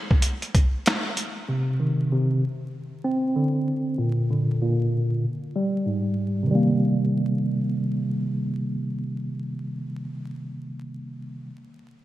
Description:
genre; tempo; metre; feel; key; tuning
hip hop, boom-bap hip-hop; 96 BPM; 4/4; swing 62% on 16ths; C minor; A4 = 440 Hz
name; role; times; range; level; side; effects
boom bap sampler-style drum kit; drums; 0.1-1.4 s; hi-hat, kick drum, snare drum; -22 LUFS; equal; gated reverb
mellow tine electric piano; accompaniment; 1.5-11.5 s; Ab2 to C4; -23 LUFS; equal; medium stereo tremolo, cassette tape, high-pass filter, low-pass filter
room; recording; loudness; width
moderate lush hall reverb, RT60 2.8 s; bright 1980s-style digital production, vinyl crackle; -22 LUFS; side -14 dB against mid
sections
0.0-6.5 A section; 6.5-9.0 B section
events
break 0.0-1.5; filter sweep on tine electric piano 0.0-6.5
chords
0.0 N.C.; 1.5 Cm; 2.4 Csus2/D; 4.0 Bb; 5.2 N.C.; 6.5 Cm7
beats
0.23 0.86 | 1.49 2.11 2.73 3.36 | 3.98 4.61 5.24 5.86 | 6.49 7.11 7.74 8.36

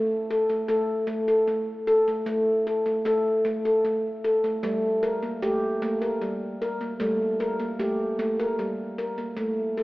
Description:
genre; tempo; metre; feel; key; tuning
world meditative, meditative tuned percussion; 51 BPM (dotted quarters); 6/8; straight; unclear; A4 = 440 Hz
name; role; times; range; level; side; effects
handpan; solo; 0.0-9.8 s; G3 to Bb4; -23 LUFS; equal; none
room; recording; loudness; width
wet echo chamber reverb, RT60 2.5 s; AM radio sound; -23 LUFS; side -19 dB against mid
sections
0.0-9.8 A section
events
none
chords
0.0 N.C.; 4.6 Gm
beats
1.09 | 2.27 3.46 | 4.64 5.83 | 7.01 8.20 | 9.38

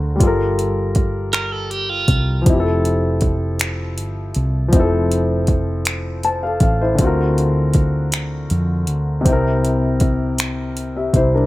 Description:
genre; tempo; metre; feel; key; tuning
slow six-eight R&B; 53 BPM (dotted quarters); 6/8; straight; F major; A4 = 436 Hz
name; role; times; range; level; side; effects
warm grand piano; accompaniment; 0.0-11.5 s; C3 to A5; -20 LUFS; left 2 dB; none
woody fretless electric bass; bass; 0.0-11.5 s; F1 to E#2; -20 LUFS; equal; none
smooth R&B drum kit; drums; 0.2-11.3 s; finger snaps, hi-hat, kick drum; -18 LUFS; equal; none
clean electric guitar; second line; 1.3-2.4 s; F4 to Bb4; -21 LUFS; right 4 dB; phaser
room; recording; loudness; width
little or no reverb; none; -16 LUFS; side -17 dB against mid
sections
0.0-11.5 A section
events
grand piano fill 5.9-7.0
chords
0.2 Gm9; 2.5 Fmaj7; 7.0 D7alt; 9.3 C7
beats
| 0.20 1.33 | 2.47 3.60 | 4.73 5.86 | 6.99 8.13 | 9.26 10.39

